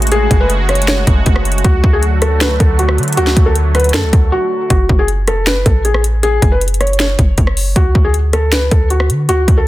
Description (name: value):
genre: hip hop, trap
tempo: 157 BPM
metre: 4/4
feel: half-time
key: F# minor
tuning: A4 = 441 Hz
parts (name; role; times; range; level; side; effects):
- sweeping resonant pad; sustained chords; 0.0-4.7 s; C#3 to F#4; -21 LUFS; right 3 dB; chorus
- clean 808-style bass; bass; 0.0-9.7 s; E#1 to D3; -14 LUFS; equal; none
- trap drum kit; drums; 0.0-9.6 s; hi-hat, kick drum, rim click, snare drum; -14 LUFS; equal; none
- felt-muted upright piano; melody; 0.1-9.7 s; F#4 to C#5; -17 LUFS; left 1 dB; low-pass filter, ping-pong delay
room: little or no reverb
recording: dense, heavily limited modern master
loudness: -10 LUFS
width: side -16 dB against mid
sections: 0.0-4.7 A section; 4.7-9.7 B section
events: break 4.3-4.7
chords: 0.0 F#madd9; 1.6 D; 4.7 F#m; 7.8 D